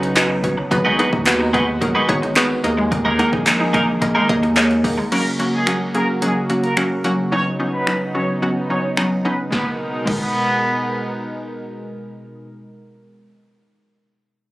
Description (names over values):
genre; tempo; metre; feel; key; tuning
dance-pop; 109 BPM; 4/4; straight; G# minor; A4 = 441 Hz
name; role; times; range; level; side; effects
hollow square pluck; accompaniment; 0.0-13.2 s; F#3 to F#5; -20 LUFS; equal; chorus, sidechain pumping
warm analog pad; sustained chords; 0.0-12.5 s; B2 to A#4; -25 LUFS; right 1 dB; chorus, sidechain pumping
twelve-string electric guitar; riff; 0.0-5.0 s; G#3 to B4; -21 LUFS; right 1 dB; analog chorus
round analog bass; bass; 0.0-5.0 s; G#1 to D#2; -24 LUFS; equal; sidechain pumping
punchy analog drum machine; drums; 0.0-10.2 s; crash cymbal, finger snaps, handclaps, hi-hat, kick drum, snare drum; -22 LUFS; equal; none
group handclap; percussion; 0.2-4.7 s; none; -29 LUFS; equal; none
resonant blip pluck; arpeggios; 0.7-5.1 s; D#3 to D#5; -24 LUFS; equal; chorus, sidechain pumping, digital delay
warm horn section; melody; 5.1-11.1 s; G#3 to C#5; -23 LUFS; equal; sidechain pumping, digital delay
room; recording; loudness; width
light reverb; recorded on a phone in the room, club reverb, compression; -16 LUFS; side -18 dB against mid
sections
0.0-5.1 A section; 5.1-9.5 B section; 9.5-11.7 C section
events
none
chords
0.0 Badd9; 0.7 G#m7; 2.6 D#sus4; 5.1 F#; 7.3 Badd9; 9.5 G#madd9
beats
0.16 | 0.71 1.26 1.82 2.37 | 2.92 3.47 4.02 4.57 | 5.12 5.67 6.22 6.77 | 7.32 7.87 8.42 8.97 | 9.52 10.07 10.62 11.17